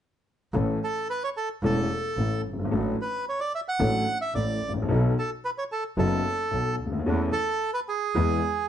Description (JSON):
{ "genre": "tango", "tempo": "110 BPM", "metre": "4/4", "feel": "rubato", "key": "A major", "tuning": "A4 = 440 Hz", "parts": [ { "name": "warm concert grand piano", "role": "accompaniment", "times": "0.5-8.4 s", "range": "E1 to A4", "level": "-27 LUFS", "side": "left 2 dB", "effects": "none" }, { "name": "bright double bass", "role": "bass", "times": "0.5-8.4 s", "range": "E1 to E2", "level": "-28 LUFS", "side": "right 1 dB", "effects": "none" }, { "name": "bandoneon", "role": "melody", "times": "0.8-8.7 s", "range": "G#4 to F#5", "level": "-28 LUFS", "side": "right 3 dB", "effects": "none" } ], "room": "light reverb", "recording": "nothing above 10.9 kHz", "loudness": "-24 LUFS", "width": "side -10 dB against mid", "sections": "0.5-8.7 A section", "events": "none", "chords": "0.5 A; 2.7 D/A; 4.9 B7; 7.1 A/E; 8.2 E" }